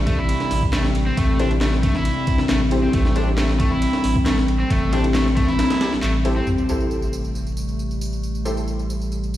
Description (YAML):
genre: breakbeat, breaks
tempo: 136 BPM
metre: 4/4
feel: straight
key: A minor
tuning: A4 = 440 Hz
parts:
  - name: warbly tape-like pad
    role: sustained chords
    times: 0.0-9.4 s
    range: C3 to C4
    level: -24 LUFS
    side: left 2 dB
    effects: chorus, built-in reverb, sidechain pumping
  - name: orchestra-hit-like synth stab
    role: stabs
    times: 0.0-8.6 s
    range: E4 to C5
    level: -29 LUFS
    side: left 1 dB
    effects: built-in reverb, tape echo
  - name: saturated sub bass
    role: bass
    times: 0.0-9.4 s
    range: A1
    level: -23 LUFS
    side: equal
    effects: none
  - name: crunchy overdriven guitar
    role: riff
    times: 0.1-6.5 s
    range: A3 to E4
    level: -26 LUFS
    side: right 1 dB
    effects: tape echo
  - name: breakbeat sampler-style drum kit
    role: drums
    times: 0.1-6.4 s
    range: hi-hat, kick drum, ride cymbal, snare drum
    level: -22 LUFS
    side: equal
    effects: studio reverb
  - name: electronic handclaps and tambourine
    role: drums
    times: 0.7-9.4 s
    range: none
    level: -36 LUFS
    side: right 1 dB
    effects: overdrive, studio reverb
  - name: sub drop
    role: sound effects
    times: 6.5-8.2 s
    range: none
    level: -29 LUFS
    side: equal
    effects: none
room: light reverb, digital ambience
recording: played on a big sound system in a bare room, stone room reverb, vinyl crackle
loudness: -18 LUFS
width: side -13 dB against mid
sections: 0.0-6.5 A section; 6.5-9.4 B section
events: filter sweep on synth stab 0.0-6.5; impact 6.5-8.2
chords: 0.0 Am7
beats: 0.29 0.73 | 1.18 1.62 2.06 2.50 | 2.94 3.38 3.82 4.26 | 4.71 5.15 5.59 6.03 | 6.47 6.91 7.35 7.79 | 8.23 8.68 9.12